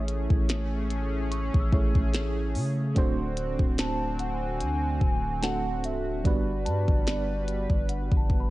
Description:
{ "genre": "contemporary R&B", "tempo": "73 BPM", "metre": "4/4", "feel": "swing 54% on 16ths", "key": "unclear", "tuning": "A4 = 440 Hz", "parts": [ { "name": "hollow clarinet-like synth lead", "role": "melody", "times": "0.0-8.5 s", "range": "D5 to A5", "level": "-34 LUFS", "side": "equal", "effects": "chorus, digital delay" }, { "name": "FM electric piano with tremolo", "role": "accompaniment", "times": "0.0-8.5 s", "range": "G3 to C#5", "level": "-33 LUFS", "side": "right 3 dB", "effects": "none" }, { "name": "chorused pulse-width pad", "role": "sustained chords", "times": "0.0-8.5 s", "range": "D3 to B4", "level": "-36 LUFS", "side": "equal", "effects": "sidechain pumping" }, { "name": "long sustained 808-style bass", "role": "bass", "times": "0.0-8.5 s", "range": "C1 to C#3", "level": "-30 LUFS", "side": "equal", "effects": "none" }, { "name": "minimal click drum kit", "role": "drums", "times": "0.1-8.5 s", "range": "hi-hat, kick drum, snare drum", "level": "-25 LUFS", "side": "equal", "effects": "none" }, { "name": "celesta", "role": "texture", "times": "1.3-8.5 s", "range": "F#5 to E6", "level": "-41 LUFS", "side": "left 4 dB", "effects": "digital delay" } ], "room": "little or no reverb", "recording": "worn, warbling old tape, cassette tape, warbly pitch drift, nothing above 10.7 kHz", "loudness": "-24 LUFS", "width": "side -18 dB against mid", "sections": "0.0-8.5 A section", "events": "none", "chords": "0.0 Amaj7; 3.0 D7; 6.2 Gmaj7" }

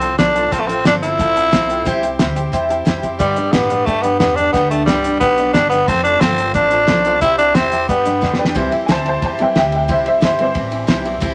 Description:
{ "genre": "rockabilly", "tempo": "179 BPM", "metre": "4/4", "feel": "straight", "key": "C major", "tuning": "A4 = 441 Hz", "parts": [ { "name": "raspy tenor saxophone", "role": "melody", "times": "0.0-8.4 s", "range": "G3 to E4", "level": "-17 LUFS", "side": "equal", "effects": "none" }, { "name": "honky-tonk upright piano", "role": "accompaniment", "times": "0.0-11.3 s", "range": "E3 to A5", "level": "-25 LUFS", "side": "equal", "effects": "none" }, { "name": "picked steel-string acoustic guitar", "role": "accompaniment", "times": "0.0-11.3 s", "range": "G2 to A4", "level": "-24 LUFS", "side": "equal", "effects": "none" }, { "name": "upright bass", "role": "bass", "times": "0.0-11.3 s", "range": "F1 to A2", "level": "-28 LUFS", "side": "equal", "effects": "none" }, { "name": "cloth-damped thuddy drum kit", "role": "drums", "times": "0.0-11.3 s", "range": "hi-hat, kick drum, ride cymbal, snare drum", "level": "-21 LUFS", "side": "equal", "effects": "none" } ], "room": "moderate studio reverb, RT60 0.8 s", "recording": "none", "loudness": "-16 LUFS", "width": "mono", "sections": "0.0-8.6 A section; 8.6-11.3 B section", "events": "honky-tonk piano fill 2.5-3.2; drum fill 8.2-8.6; honky-tonk piano solo 8.6-11.3", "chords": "0.0 F; 1.9 C; 3.2 G; 5.9 F; 7.2 C; 7.9 G; 8.6 C" }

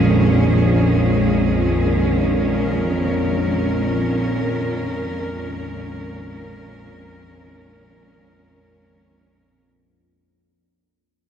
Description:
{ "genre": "ambient", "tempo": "free time", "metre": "none", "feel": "none", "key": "unclear", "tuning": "A4 = 440 Hz", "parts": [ { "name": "clear studio cello section", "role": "sustained chords", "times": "0.0-9.7 s", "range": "Bb2 to Bb4", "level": "-21 LUFS", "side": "equal", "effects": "none" }, { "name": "bowed-like drone", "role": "drone", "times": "0.0-9.8 s", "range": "Bb1 to F2", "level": "-19 LUFS", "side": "equal", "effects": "built-in reverb" } ], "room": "wet plate reverb, RT60 3.8 s", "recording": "none", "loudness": "-17 LUFS", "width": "side -8 dB against mid", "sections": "0.0-9.7 A section", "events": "fade-out 0.0-9.7", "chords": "0.0 Dbsus2/Bb" }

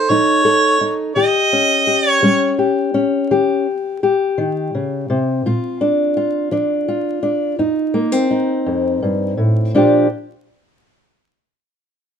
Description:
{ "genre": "acoustic country blues, solo or duo", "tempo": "56 BPM (dotted quarters)", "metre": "12/8", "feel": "straight", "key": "unclear", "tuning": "A4 = 440 Hz", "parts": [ { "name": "warm harmonica", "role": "melody", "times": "0.0-2.5 s", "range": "C5 to Eb5", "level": "-14 LUFS", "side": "right 1 dB", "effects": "none" }, { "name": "fingerpicked old ladder-braced acoustic guitar", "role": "accompaniment", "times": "0.0-10.1 s", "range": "F2 to A4", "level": "-16 LUFS", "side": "left 1 dB", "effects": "none" } ], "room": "moderate studio reverb, RT60 0.8 s", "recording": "band playing live in one room, vinyl crackle", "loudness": "-14 LUFS", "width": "side -7 dB against mid", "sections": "0.0-9.7 A section; 9.7-12.2 B section", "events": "none", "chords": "0.0 F7; 1.2 Eb7; 5.4 Bb; 7.6 F7; 9.7 Bb6" }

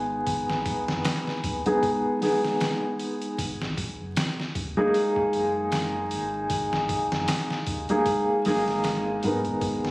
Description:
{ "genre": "trip hop", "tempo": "77 BPM", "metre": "4/4", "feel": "swing 57% on 16ths", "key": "unclear", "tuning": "A4 = 440 Hz", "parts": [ { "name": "felt-muted upright piano", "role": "accompaniment", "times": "0.0-9.9 s", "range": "G#3 to A#4", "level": "-24 LUFS", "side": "equal", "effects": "tremolo, vintage 12-bit sampler grit, low-pass filter, tape echo" }, { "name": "round analog bass", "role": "bass", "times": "0.0-9.9 s", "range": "F#1 to G#2", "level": "-36 LUFS", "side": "equal", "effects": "none" }, { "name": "trip hop sampler-style drum kit", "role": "drums", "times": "0.3-9.9 s", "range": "hi-hat, kick drum, snare drum", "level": "-30 LUFS", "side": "equal", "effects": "small room ambience" }, { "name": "deep dark ambient pad", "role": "sustained chords", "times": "9.6-9.9 s", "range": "none", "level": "barely audible", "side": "none", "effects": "none" } ], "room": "light reverb", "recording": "recorded on a phone in the room, studio reverb, vinyl crackle, compression", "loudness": "-23 LUFS", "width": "side -22 dB against mid", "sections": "0.0-9.9 A section", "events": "filter sweep on felt piano 0.0-9.9", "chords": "0.0 D#sus4" }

